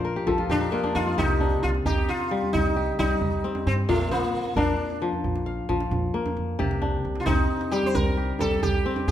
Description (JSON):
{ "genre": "west african traditional, West African string and xylophone music", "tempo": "89 BPM (dotted quarters)", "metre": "12/8", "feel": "straight", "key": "C dorian", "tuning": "A4 = 442 Hz", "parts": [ { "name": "kora", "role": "arpeggios", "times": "0.0-9.1 s", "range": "Bb2 to F5", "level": "-26 LUFS", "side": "left 3 dB", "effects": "none" }, { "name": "upright bass", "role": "bass", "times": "0.0-9.1 s", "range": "Bb1 to G2", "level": "-28 LUFS", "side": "right 1 dB", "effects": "none" }, { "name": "djembe", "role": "percussion", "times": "0.3-9.1 s", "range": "none", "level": "-31 LUFS", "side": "right 4 dB", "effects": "none" }, { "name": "sitar", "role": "melody", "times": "0.5-9.1 s", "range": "A3 to C5", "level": "-27 LUFS", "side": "right 1 dB", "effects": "none" } ], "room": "moderate recital hall reverb, RT60 1.5 s", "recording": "none", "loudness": "-22 LUFS", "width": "side -11 dB against mid", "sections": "0.0-9.1 A section", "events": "kora fill 0.0-1.2", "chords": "0.0 Bb; 1.2 Cm; 3.9 Bb; 6.6 Cm" }